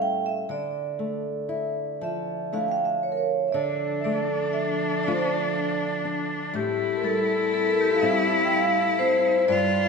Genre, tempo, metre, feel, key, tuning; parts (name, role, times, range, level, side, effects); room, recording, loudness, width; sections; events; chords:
celtic folk, Celtic slow air; 40 BPM (dotted quarters); 6/8; rubato; D harmonic minor, D minor from 3.6 s; A4 = 439 Hz
vibraphone with medium mallets; melody; 0.0-9.9 s; G4 to G5; -25 LUFS; right 1 dB
nylon-string guitar; accompaniment; 0.0-9.9 s; G2 to G4; -30 LUFS; left 2 dB
dark studio string section; sustained chords; 3.5-9.9 s; F3 to B4; -34 LUFS; right 2 dB
rich cello; second line; 3.6-9.9 s; D4 to F4; -26 LUFS; left 3 dB
wet scoring stage reverb, RT60 1.7 s; recorded in a church or concert hall; -22 LUFS; side -4 dB against mid
0.0-3.6 A section; 3.6-9.9 B section
0.0 A7; 0.5 Dmadd9; 3.6 Dm; 6.6 Am7